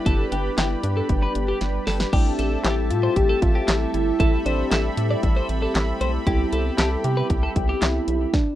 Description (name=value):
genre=synth-pop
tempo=116 BPM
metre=4/4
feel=straight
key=unclear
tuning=A4 = 440 Hz
part: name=soft struck synth lead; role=melody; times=0.0-8.6 s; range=D4 to A4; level=-27 LUFS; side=equal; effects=chorus, phaser, analog delay, plate reverb
part: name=mellow synth brass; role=accompaniment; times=0.0-8.3 s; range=G3 to B4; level=-30 LUFS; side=equal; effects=chorus, plate reverb
part: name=brassy analog pad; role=sustained chords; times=0.0-8.3 s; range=G4 to B5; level=-30 LUFS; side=left 1 dB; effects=chorus, plate reverb
part: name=twelve-string electric guitar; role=second line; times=0.1-7.9 s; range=G4 to D5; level=-29 LUFS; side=left 1 dB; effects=analog delay, plate reverb
part: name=rubbery square bass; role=bass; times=0.1-8.3 s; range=G1 to C3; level=-24 LUFS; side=equal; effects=none
part: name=house drum kit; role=drums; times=0.1-8.5 s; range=crash cymbal, handclaps, hi-hat, kick drum, snare drum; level=-23 LUFS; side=equal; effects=none
room=light reverb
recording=rough home demo mix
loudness=-19 LUFS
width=side -13 dB against mid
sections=0.0-8.6 A section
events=drum fill 1.6-2.1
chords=0.0 G; 2.1 Am7; 6.3 Cmaj7